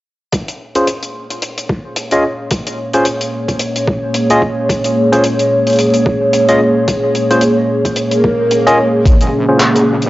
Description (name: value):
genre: glitch hop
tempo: 110 BPM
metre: 4/4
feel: swing 56% on 16ths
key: Bb minor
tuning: A4 = 441 Hz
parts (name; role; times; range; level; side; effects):
- dark analog pad; sustained chords; 0.3-10.1 s; Bb3 to Db5; -14 LUFS; equal; chorus, vintage 12-bit sampler grit, sidechain pumping, cassette tape
- electronic kick drum; drums; 0.3-9.2 s; none; -14 LUFS; equal; high-pass filter on kick, cassette tape
- tight metal drum kit; drums; 0.3-10.1 s; handclaps, hi-hat; -21 LUFS; left 1 dB; cassette tape
- barky tine electric piano; stabs; 0.8-9.6 s; Db4 to Eb5; -16 LUFS; equal; overdrive, sidechain pumping, low-pass filter, cassette tape, tape echo
- swell and riser; sound effects; 8.2-10.1 s; none; -18 LUFS; equal; none
- wobble bass; bass; 9.1-10.1 s; Ab1 to Bb1; -22 LUFS; equal; chorus, high-pass filter
room: wet spring reverb, RT60 2.4 s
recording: home recording on cassette, nothing above 7.6 kHz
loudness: -11 LUFS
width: side -17 dB against mid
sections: 0.3-9.1 A section; 9.1-10.1 B section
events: filter sweep on tine electric piano 0.3-9.1, 9.1-10.1; swell 8.2-9.1; kick drops out 8.5-9.1; build-up 9.1-10.1; filter sweep 9.1-10.1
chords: 0.3 Bbm7